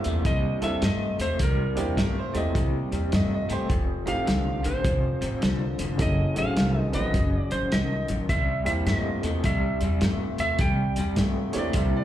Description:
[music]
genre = electric blues shuffle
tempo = 104 BPM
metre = 4/4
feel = swing 64% on 8ths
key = C mixolydian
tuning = A4 = 443 Hz
[part]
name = clean lap steel guitar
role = melody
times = 0.0-12.0 s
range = Bb4 to G5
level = -30 LUFS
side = right 1 dB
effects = slapback echo
[part]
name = warm upright piano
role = accompaniment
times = 0.0-12.0 s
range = A3 to B4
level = -32 LUFS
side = right 4 dB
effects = slapback echo
[part]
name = electric guitar through a small old amp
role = riff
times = 0.0-12.0 s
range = F2 to A3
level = -30 LUFS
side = left 3 dB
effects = tremolo
[part]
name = warm soul drum kit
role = drums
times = 0.0-11.9 s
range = hi-hat, kick drum, snare drum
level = -28 LUFS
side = equal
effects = none
[part]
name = upright bass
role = bass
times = 0.1-12.0 s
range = F1 to G2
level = -27 LUFS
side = equal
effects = none
[part]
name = bright upright piano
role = second line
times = 2.0-3.8, 11.5-12.0 s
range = G4 to E5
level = -34 LUFS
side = right 4 dB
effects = slapback echo
[sound]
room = little or no reverb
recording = live gig heard through the venue's PA, club reverb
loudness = -23 LUFS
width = side -12 dB against mid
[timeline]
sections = 0.0-12.0 A section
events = none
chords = 0.0 C9; 3.7 F9; 6.0 F#dim7; 8.3 C9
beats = 0.26 0.83 | 1.40 1.98 2.55 3.12 | 3.70 4.27 4.85 5.42 | 6.00 6.57 7.15 7.72 | 8.30 8.87 9.45 10.02 | 10.60 11.17 11.74

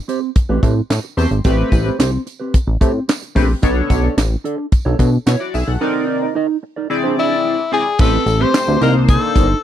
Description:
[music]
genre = early-eighties boogie funk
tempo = 110 BPM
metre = 4/4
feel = straight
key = A dorian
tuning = A4 = 439 Hz
[part]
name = mellow electric guitar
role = riff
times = 0.1-9.6 s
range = C4 to Eb5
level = -21 LUFS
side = right 5 dB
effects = wide subtle chorus
[part]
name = tight funk drum kit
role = drums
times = 0.1-9.5 s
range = crash cymbal, handclaps, hi-hat, kick drum, snare drum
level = -15 LUFS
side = equal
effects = none
[part]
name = tambourine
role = percussion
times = 0.1-9.5 s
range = none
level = -35 LUFS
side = right 11 dB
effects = none
[part]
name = chorused synth bass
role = bass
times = 0.5-9.5 s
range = G1 to B2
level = -16 LUFS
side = equal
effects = none
[part]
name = chorused polysynth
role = accompaniment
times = 1.2-9.5 s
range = A3 to F#5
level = -20 LUFS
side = left 2 dB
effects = phaser
[part]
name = breathy tenor saxophone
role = melody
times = 7.2-9.6 s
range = E4 to C5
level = -18 LUFS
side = left 4 dB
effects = slapback echo
[sound]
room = little or no reverb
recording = dry, close 1970s-style studio recording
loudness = -14 LUFS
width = side -11 dB against mid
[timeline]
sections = 0.0-8.0 A section; 8.0-9.6 B section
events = none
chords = 0.0 Am9; 3.6 Bm9; 5.8 Cm9; 6.9 E7b13; 8.0 Am9; 8.8 Cm9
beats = 0.36 0.90 | 1.45 2.00 2.54 3.08 | 3.63 4.18 4.72 5.27 | 5.81 6.36 6.90 7.45 | 8.00 8.54 9.09 9.63

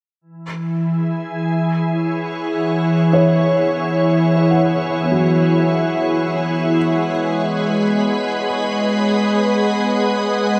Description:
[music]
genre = ambient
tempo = free time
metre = none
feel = none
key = unclear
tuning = A4 = 440 Hz
[part]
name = soft additive organ-like pad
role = sustained chords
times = 0.4-10.6 s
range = E3 to F#5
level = -18 LUFS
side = equal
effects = ensemble chorus, built-in reverb
[part]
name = organ-like drone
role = drone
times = 2.4-10.6 s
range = B3 to B4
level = -30 LUFS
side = equal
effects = ensemble chorus, built-in reverb, phaser
[part]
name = felt-muted upright piano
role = arpeggios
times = 3.1-9.1 s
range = F#3 to F#5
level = -25 LUFS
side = equal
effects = diffuse ambient delay
[sound]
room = wet huge ambient reverb, RT60 7.8 s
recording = none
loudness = -18 LUFS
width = mono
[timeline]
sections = 0.2-10.6 A section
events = fade-in on synth drone 0.2-10.6; fade-out on felt piano 0.2-10.6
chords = 0.2 E6; 6.8 G#m7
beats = free time

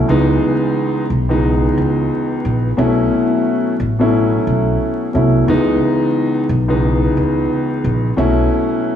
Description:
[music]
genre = hip hop, boom-bap hip-hop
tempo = 89 BPM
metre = 4/4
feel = swing 62% on 16ths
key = C# minor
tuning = A4 = 440 Hz
[part]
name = dark grand piano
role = accompaniment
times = 0.0-9.0 s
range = C#2 to E4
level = -15 LUFS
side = left 1 dB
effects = high-pass filter, low-pass filter
[part]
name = upright bass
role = bass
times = 0.0-8.5 s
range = A1 to C#2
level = -18 LUFS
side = equal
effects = none
[sound]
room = wet lush hall reverb, RT60 2.4 s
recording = dreamy mix soaked in reverb, vinyl crackle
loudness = -13 LUFS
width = side -9 dB against mid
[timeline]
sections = 0.0-9.0 A section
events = none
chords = 0.1 C#m9; 2.8 B9sus4; 5.5 C#m9; 8.2 B9sus4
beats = | 0.08 0.76 1.43 2.11 | 2.78 3.45 4.13 4.80 | 5.48 6.15 6.83 7.50 | 8.17 8.85

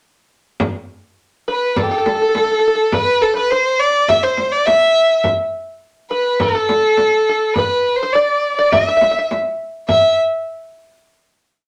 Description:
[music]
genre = Arabic maqam ensemble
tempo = 103 BPM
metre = 4/4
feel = straight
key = E maqam bayati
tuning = A4 = 439 Hz
[part]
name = frame drum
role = percussion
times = 0.6-10.2 s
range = none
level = -25 LUFS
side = equal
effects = none
[part]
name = dark violin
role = melody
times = 1.5-10.2 s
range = G4 to E5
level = -17 LUFS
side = equal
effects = none
[part]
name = open-back banjo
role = second line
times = 1.5-10.2 s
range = A4 to E5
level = -22 LUFS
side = equal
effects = none
[sound]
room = wet studio reverb, RT60 0.6 s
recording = none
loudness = -16 LUFS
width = mono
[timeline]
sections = 0.6-9.9 A section; 9.9-11.7 final note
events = none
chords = none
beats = | 0.60 1.18 1.76 2.34 | 2.92 3.50 4.08 4.66 | 5.25 5.83 6.41 6.99 | 7.57 8.15 8.73 9.31 | 9.89

